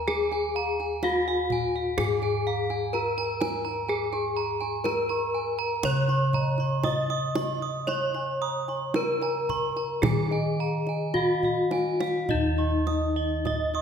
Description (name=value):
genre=Javanese gamelan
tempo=52-63 BPM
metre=4/4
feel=straight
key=Eb slendro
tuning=A4 = 440 Hz
part: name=gamelan-type bronze metallophone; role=melody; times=0.0-13.8 s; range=Eb4 to Eb5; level=-27 LUFS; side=left 2 dB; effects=none
part: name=gamelan-type bronze metallophone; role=arpeggios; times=0.0-13.8 s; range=Eb5 to Eb6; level=-32 LUFS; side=right 6 dB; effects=none
part: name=gamelan-type bossed gongs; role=bass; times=0.0-13.8 s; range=Eb2 to Db5-40c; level=-31 LUFS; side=equal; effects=none
part: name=kendang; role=percussion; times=0.1-13.8 s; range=none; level=-32 LUFS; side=right 2 dB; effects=none
part: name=gamelan-type bossed gongs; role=arpeggios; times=0.3-13.8 s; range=Eb5 to Db6-40c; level=-36 LUFS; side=left 2 dB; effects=none
room=wet scoring stage reverb, RT60 1.7 s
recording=recorded in a church or concert hall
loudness=-24 LUFS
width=side -7 dB against mid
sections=0.0-12.3 A section; 12.3-13.8 B section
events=drum fill 11.1-12.3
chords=none